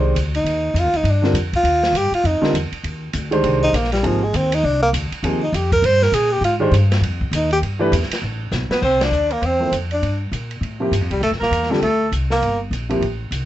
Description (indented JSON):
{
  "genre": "modal jazz",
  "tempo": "201 BPM",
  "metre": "4/4",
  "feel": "swing 61% on 8ths",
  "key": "Eb major, C mixolydian from 8.8 s",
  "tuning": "A4 = 442 Hz",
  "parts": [
    { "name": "breathy tenor saxophone", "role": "melody", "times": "0.0-12.6 s", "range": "F3 to C5", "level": "-18 LUFS", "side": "equal", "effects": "none" },
    { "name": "warm grand piano", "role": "accompaniment", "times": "0.0-13.0 s", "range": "C3 to D5", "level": "-20 LUFS", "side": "equal", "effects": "none" },
    { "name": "upright bass", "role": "bass", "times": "0.0-13.5 s", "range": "G1 to Bb2", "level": "-21 LUFS", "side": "equal", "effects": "none" },
    { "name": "open jazz drum kit", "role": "drums", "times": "0.2-13.4 s", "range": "crash cymbal, hi-hat, kick drum, ride cymbal, snare drum", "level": "-27 LUFS", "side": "right 1 dB", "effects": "none" },
    { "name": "breathy alto saxophone", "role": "second line", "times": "8.7-12.6 s", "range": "G4 to D5", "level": "-24 LUFS", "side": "right 1 dB", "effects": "none" }
  ],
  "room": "light reverb",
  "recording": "nothing above 8.0 kHz",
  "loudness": "-16 LUFS",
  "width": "side -13 dB against mid",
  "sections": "0.0-8.8 A section; 8.8-13.5 B section",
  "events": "tenor saxophone solo 0.0-8.8; drum fill 8.5-8.8; band accent 9.0",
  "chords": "0.0 Ebmaj9; 4.0 Abmaj9; 7.6 G69; 8.8 C13sus4",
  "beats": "0.15 | 0.45 0.75 1.05 1.35 | 1.65 1.95 2.25 2.55 | 2.85 3.14 3.44 3.74 | 4.04 4.34 4.64 4.94 | 5.23 5.53 5.83 6.13 | 6.43 6.73 7.03 7.33 | 7.62 7.92 8.22 8.52 | 8.82 9.12 9.42 9.72 | 10.02 10.32 10.62 10.92 | 11.22 11.52 11.82 12.12 | 12.42 12.72 13.02 13.32"
}